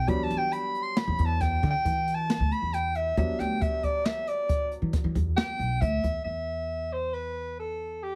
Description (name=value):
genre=progressive instrumental, band music in an uneven meter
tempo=136 BPM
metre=7/4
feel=straight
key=E minor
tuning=A4 = 436 Hz
part: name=warm soprano saxophone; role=melody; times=0.0-8.2 s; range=G4 to C6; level=-31 LUFS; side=equal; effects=none
part: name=warm grand piano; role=accompaniment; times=0.0-6.2 s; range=F#3 to D4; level=-38 LUFS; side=equal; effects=none
part: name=upright bass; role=bass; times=0.0-8.2 s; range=B1 to E3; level=-32 LUFS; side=equal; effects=none
part: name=jazz brush drum kit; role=drums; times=0.1-6.1 s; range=hi-hat, kick drum, snare drum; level=-33 LUFS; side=equal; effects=none
room=light reverb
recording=heavily compressed radio sound, multiband compression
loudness=-28 LUFS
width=mono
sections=0.0-6.3 A section; 6.3-8.2 B section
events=soprano saxophone solo 0.0-6.3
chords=0.0 Em7; 6.3 E5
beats=| 0.08 0.52 0.96 1.41 1.84 2.29 2.73 | 3.17 3.61 4.05 4.49 4.93 5.37 5.81 | 6.25 6.70 7.14 7.58 8.02